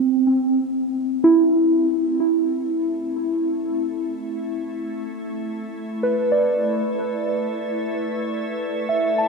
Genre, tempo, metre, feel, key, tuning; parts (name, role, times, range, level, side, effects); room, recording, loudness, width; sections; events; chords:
ambient; free time; A minor; A4 = 440 Hz
muted felt-like synth keys; arpeggios; 0.0-9.3 s; C4 to A5; -20 LUFS; right 1 dB; chorus, tape echo
organ-like drone; drone; 1.8-9.3 s; A3 to E4; -30 LUFS; equal; ensemble chorus, built-in reverb
wet cathedral reverb, RT60 5.2 s; -19 LUFS; side -3 dB against mid
0.0-9.3 A section
fade-in on synth drone 0.0-9.3
0.0 Am; 5.1 Dsus2/A